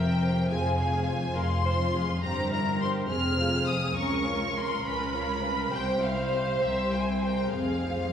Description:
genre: quick classical-period movement for string orchestra.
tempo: 68 BPM (dotted quarters).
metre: 6/8.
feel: uneven beats, rubato.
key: F minor.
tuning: A4 = 440 Hz.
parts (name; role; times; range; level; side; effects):
rich studio violin section; melody; 0.0-8.1 s; E5 to F6; -31 LUFS; left 2 dB; none.
warm studio violin section; second line; 0.0-8.1 s; C4 to F5; -33 LUFS; equal; none.
warm studio viola section; accompaniment; 0.0-8.1 s; Ab4 to C5; -33 LUFS; right 2 dB; none.
rich studio cello section; bass; 0.0-8.1 s; C2 to G2; -31 LUFS; equal; none.
rich studio double bass section; bass; 0.0-8.1 s; F1 to Db2; -32 LUFS; equal; none.
room: wet church reverb, RT60 2.6 s.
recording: recorded in a church or concert hall, small room ambience.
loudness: -25 LUFS.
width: side -8 dB against mid.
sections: 0.0-8.1 A section.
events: none.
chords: 0.5 Fm; 2.2 C7/G; 3.1 Fm; 4.0 Bbm/Db; 5.7 C; 7.5 Fm.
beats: | 0.49 1.35 | 2.22 3.10 | 3.98 4.86 | 5.73 6.63 | 7.55.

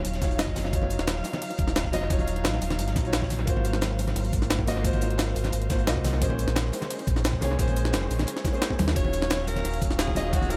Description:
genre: liquid drum and bass.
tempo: 175 BPM.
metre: 4/4.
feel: straight.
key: Eb dorian.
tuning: A4 = 437 Hz.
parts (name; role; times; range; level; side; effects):
warm grand piano; accompaniment; 0.0-10.6 s; Gb3 to Eb5; -35 LUFS; equal; analog delay.
dark studio string section; sustained chords; 0.0-10.6 s; Gb3 to F5; -38 LUFS; equal; none.
sub bass with octave; bass; 0.0-10.6 s; Eb1 to Eb2; -31 LUFS; equal; none.
crunchy breakbeat drum kit; drums; 0.0-10.6 s; hi-hat, snare drum; -41 LUFS; equal; high-pass filter on hats, high-pass filter on snare, high-pass filter on room, analog delay.
jungle sampler-style drum kit; drums; 0.0-10.6 s; hi-hat, shaker, snare drum, toms; -33 LUFS; equal; analog delay.
electronic kick drum; drums; 0.2-10.4 s; none; -31 LUFS; equal; none.
congas and bongos; percussion; 0.2-10.6 s; none; -38 LUFS; equal; none.
clear alto saxophone; melody; 9.0-10.6 s; Gb4 to Db5; -35 LUFS; equal; analog delay.
room: light reverb.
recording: echo-heavy mix.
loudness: -26 LUFS.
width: mono.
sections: 0.0-10.6 A section.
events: drum fill 8.7.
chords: 0.0 Ebm9; 3.5 Ab13; 6.2 Bbm9; 9.0 Ebm9.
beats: 0.05 0.39 | 0.73 1.07 1.42 1.76 | 2.10 2.45 2.79 3.13 | 3.48 3.82 4.16 4.50 | 4.85 5.19 5.53 5.88 | 6.22 6.56 6.90 7.25 | 7.59 7.93 8.28 8.62 | 8.96 9.30 9.65 9.99 | 10.33.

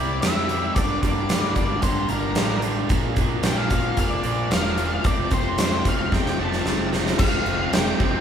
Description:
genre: classic rock.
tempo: 112 BPM.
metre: 4/4.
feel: straight.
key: unclear.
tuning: A4 = 440 Hz.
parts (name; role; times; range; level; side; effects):
octave-fuzz lead guitar; melody; 0.0-8.2 s; Bb4 to A5; -28 LUFS; left 4 dB; distortion.
string machine, cellos; sustained chords; 0.0-8.2 s; A3 to E5; -38 LUFS; equal; none.
overdriven electric guitar; riff; 0.0-8.2 s; F2 to C4; -29 LUFS; left 3 dB; none.
overdriven electric guitar; riff; 0.0-8.2 s; F2 to E4; -29 LUFS; right 7 dB; none.
growling fingered electric bass; bass; 0.0-8.2 s; E1 to G2; -29 LUFS; equal; overdrive.
huge arena drum kit; drums; 0.2-8.1 s; crash cymbal, hi-hat, kick drum, snare drum; -22 LUFS; equal; none.
room: moderate large studio reverb, RT60 0.8 s.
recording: band playing live in one room.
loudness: -20 LUFS.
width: side -8 dB against mid.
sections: 0.0-7.2 A section; 7.2-8.2 B section.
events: drum fill 6.1-7.2.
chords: 0.0 C; 0.8 Gm; 2.9 Bb; 5.0 F.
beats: 0.23 | 0.76 1.30 1.83 2.37 | 2.90 3.44 3.98 4.51 | 5.05 5.58 6.12 6.66 | 7.20 7.73.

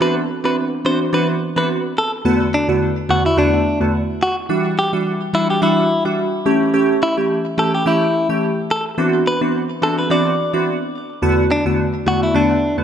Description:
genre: afrobeats.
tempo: 107 BPM.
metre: 4/4.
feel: swing 55% on 16ths.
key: unclear.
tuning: A4 = 441 Hz.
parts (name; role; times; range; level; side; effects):
direct-recorded clean electric guitar; melody; 0.0-12.8 s; D4 to D5; -19 LUFS; left 1 dB; spring reverb, digital delay.
glassy digital keys; accompaniment; 0.0-12.8 s; E2 to G4; -17 LUFS; right 1 dB; chorus.
room: light reverb, digital ambience.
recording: none.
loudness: -15 LUFS.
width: side -8 dB against mid.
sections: 0.0-2.3 A section; 2.3-12.8 B section.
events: none.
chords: 0.0 D13/E; 2.3 Bm7/E; 4.5 Em9; 6.5 A7/E; 9.0 D13/E; 11.2 Bm7/E.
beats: | 0.01 0.57 1.13 1.69 | 2.25 2.81 3.37 3.93 | 4.49 5.05 5.62 6.18 | 6.74 7.30 7.86 8.42 | 8.98 9.54 10.10 10.66 | 11.22 11.78 12.35.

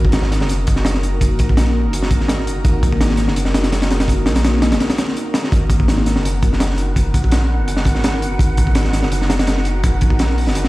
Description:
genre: drum and bass, jungle.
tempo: 167 BPM.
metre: 4/4.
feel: straight.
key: G# minor.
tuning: A4 = 440 Hz.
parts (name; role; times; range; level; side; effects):
long sustained 808-style bass; bass; 0.0-10.7 s; F#1 to A#1; -18 LUFS; equal; none.
crunchy breakbeat drum kit; drums; 0.0-10.7 s; hi-hat, kick drum, snare drum; -17 LUFS; equal; none.
wind-like tuned noise texture; texture; 6.1-10.7 s; F#5; -30 LUFS; right 2 dB; built-in reverb.
room: light reverb, small room ambience.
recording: played on a big sound system in a bare room, large studio reverb, vinyl crackle.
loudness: -14 LUFS.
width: side -18 dB against mid.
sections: 0.0-10.7 A section.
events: break 4.8-5.5.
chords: 0.0 D#m; 5.5 G#m9.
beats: 0.13 0.49 0.85 | 1.21 1.57 1.93 2.29 | 2.65 3.00 3.37 3.72 | 4.08 4.44 4.80 5.16 | 5.52 5.88 6.24 6.60 | 6.96 7.32 7.68 8.04 | 8.39 8.75 9.11 9.47 | 9.83 10.19 10.55.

